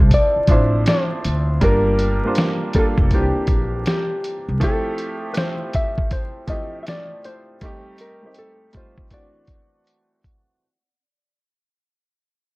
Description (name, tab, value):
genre	lo-fi hip hop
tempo	80 BPM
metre	4/4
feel	swing 64% on 16ths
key	D minor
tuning	A4 = 441 Hz
part	hollow-body jazz guitar	melody	0.0-10.2 s	G4 to E5	-24 LUFS	left 1 dB	low-pass filter
part	bright upright piano	accompaniment	0.0-10.6 s	E3 to C5	-25 LUFS	right 1 dB	low-pass filter
part	upright bass	bass	0.0-4.6 s	F1 to D2	-20 LUFS	equal	none
part	lo-fi sampler-style drum kit	drums	0.1-10.5 s	hi-hat, kick drum, snare drum	-19 LUFS	equal	vintage 12-bit sampler grit
room	light reverb, small room ambience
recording	vinyl crackle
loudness	-17 LUFS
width	side -23 dB against mid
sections	0.0-10.6 A section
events	fade-out 0.0-10.6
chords	0.0 Dm7; 1.6 Gm9; 3.1 C9; 4.6 Fmaj7; 7.6 Am7b5; 9.1 D7